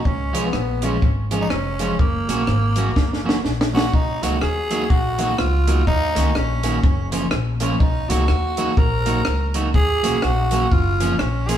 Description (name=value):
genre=ska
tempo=124 BPM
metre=4/4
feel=swing 59% on 8ths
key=unclear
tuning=A4 = 440 Hz
part: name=growling tenor saxophone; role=melody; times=0.0-11.6 s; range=A#3 to A#4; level=-24 LUFS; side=right 1 dB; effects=none
part: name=upright bass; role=bass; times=0.1-11.6 s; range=E#1 to D#2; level=-22 LUFS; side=left 1 dB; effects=none
part: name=compact cocktail drum kit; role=drums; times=0.1-11.6 s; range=hi-hat, kick drum, rim click, snare drum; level=-21 LUFS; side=equal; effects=none
part: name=electric guitar at the edge of break-up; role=accompaniment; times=0.3-11.6 s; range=D#3 to F#4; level=-24 LUFS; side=right 2 dB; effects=none
room=moderate stone room reverb, RT60 1.3 s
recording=band playing live in one room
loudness=-17 LUFS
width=side -10 dB against mid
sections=0.0-3.9 A section; 3.9-11.6 B section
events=drum fill 3.0-3.9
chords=0.1 C#; 2.0 F#; 3.9 Bmaj7; 5.9 D#m7; 6.8 F#maj7; 7.8 Bmaj7; 10.7 F#maj7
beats=| 0.06 0.54 1.02 1.51 | 1.99 2.48 2.96 3.45 | 3.93 4.42 4.90 5.38 | 5.87 6.36 6.84 7.32 | 7.81 8.29 8.78 9.26 | 9.75 10.23 10.72 11.20